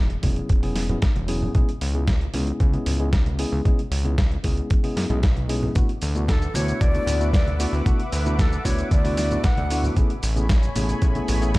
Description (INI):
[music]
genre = nu-disco, nu disco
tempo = 114 BPM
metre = 4/4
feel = straight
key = unclear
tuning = A4 = 440 Hz
[part]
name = fat analog bass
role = bass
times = 0.0-11.6 s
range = E1 to F#2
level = -24 LUFS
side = equal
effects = none
[part]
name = dusty soul sampler-style drum kit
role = drums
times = 0.1-11.6 s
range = hi-hat, shaker, snare drum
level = -31 LUFS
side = equal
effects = overdrive
[part]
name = tine electric piano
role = accompaniment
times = 0.2-11.5 s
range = F#3 to G#4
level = -28 LUFS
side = left 1 dB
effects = none
[part]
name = electronic kick drum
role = drums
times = 0.2-11.6 s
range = none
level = -20 LUFS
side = equal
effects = overdrive
[part]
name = congas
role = percussion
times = 0.2-11.4 s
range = none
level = -32 LUFS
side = right 1 dB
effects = none
[part]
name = lush unison pad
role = sustained chords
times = 6.2-11.6 s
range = A3 to D6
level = -33 LUFS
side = equal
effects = chorus, sidechain pumping
[part]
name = breathy bright jazz flute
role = melody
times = 6.3-9.8 s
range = A4 to F#5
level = -29 LUFS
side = left 1 dB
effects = digital delay
[sound]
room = digital ambience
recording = dark, warm production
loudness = -19 LUFS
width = side -20 dB against mid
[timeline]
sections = 0.0-11.6 A section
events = none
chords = 0.0 E6; 1.5 C#m7; 5.8 D69; 10.0 Amaj9